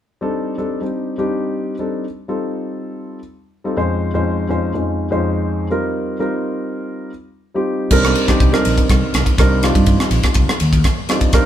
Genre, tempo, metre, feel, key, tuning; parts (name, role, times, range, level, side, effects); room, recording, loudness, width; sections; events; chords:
electric jazz fusion; 123 BPM; 4/4; straight; C dorian; A4 = 440 Hz
dark concert grand piano; accompaniment; 0.2-11.5 s; F2 to F5; -18 LUFS; equal
mellow fretless electric bass; bass; 7.9-11.4 s; Bb1 to G2; -18 LUFS; right 1 dB
crisp fusion drum kit; drums; 7.9-11.4 s; crash cymbal, kick drum, ride cymbal, rim click; -15 LUFS; equal
moderate studio reverb, RT60 0.9 s; band playing live in one room; -15 LUFS; side -11 dB against mid
0.1-7.9 A section; 7.9-11.5 B section
grand piano fill 10.8-11.5
0.1 Cm69; 2.0 F9; 3.8 Dbmaj9/F; 5.7 Eb69; 7.9 Cm9